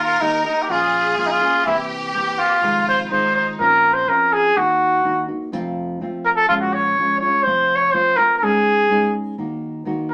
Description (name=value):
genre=mexican folk, mariachi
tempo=124 BPM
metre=2/4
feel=straight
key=F minor, Bb minor from 3.6 s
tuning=A4 = 440 Hz
part: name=warm trumpet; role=melody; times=0.0-10.1 s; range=Eb4 to Db5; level=-18 LUFS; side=equal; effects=none
part: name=bright studio violin section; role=second line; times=0.0-3.6 s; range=Eb4 to Bb4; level=-27 LUFS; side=equal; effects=none
part: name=nylon-string guitar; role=accompaniment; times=0.0-10.1 s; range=F2 to Ab4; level=-28 LUFS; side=equal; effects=none
room=wet club reverb, RT60 0.5 s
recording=none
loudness=-18 LUFS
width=mono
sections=0.0-3.6 A section; 3.6-10.1 B section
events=none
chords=0.0 Eb; 0.7 Bbm; 1.7 C7; 2.6 Fm7; 3.6 Bbmadd9; 4.6 Ebm; 5.5 F; 6.5 Bbm7; 7.5 F; 8.4 Dbsus2; 9.4 Ebm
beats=0.21 | 0.70 1.18 | 1.67 2.15 | 2.63 3.11 | 3.60 4.08 | 4.57 5.04 | 5.53 6.00 | 6.49 6.97 | 7.46 7.94 | 8.42 8.90 | 9.38 9.86